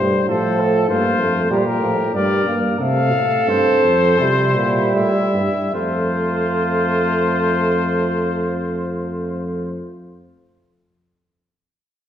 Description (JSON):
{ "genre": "classical, imitative canzona for brass ensemble", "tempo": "73-102 BPM", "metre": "4/4", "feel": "straight", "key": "F major", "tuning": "A4 = 441 Hz", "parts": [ { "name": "warm trumpet", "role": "melody", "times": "0.0-9.8 s", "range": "A4 to F5", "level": "-22 LUFS", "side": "left 6 dB", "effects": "none" }, { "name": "warm euphonium", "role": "accompaniment", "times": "0.0-9.8 s", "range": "F3 to C4", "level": "-21 LUFS", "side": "right 1 dB", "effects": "none" }, { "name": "warm bass trombone", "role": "bass", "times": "0.0-9.8 s", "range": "F2 to C3", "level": "-21 LUFS", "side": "right 1 dB", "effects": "none" }, { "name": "mellow trumpet", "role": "second line", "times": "0.3-9.8 s", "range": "E4 to C5", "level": "-23 LUFS", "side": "right 4 dB", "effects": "none" } ], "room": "wet recital hall reverb, RT60 1.7 s", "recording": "heard from further back in the room", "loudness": "-16 LUFS", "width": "side -10 dB against mid", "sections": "0.0-5.7 A section; 5.7-9.0 B section", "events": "slowing down 0.0-5.7", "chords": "0.3 F/A; 1.5 Gm; 2.8 F; 4.2 C; 5.7 F" }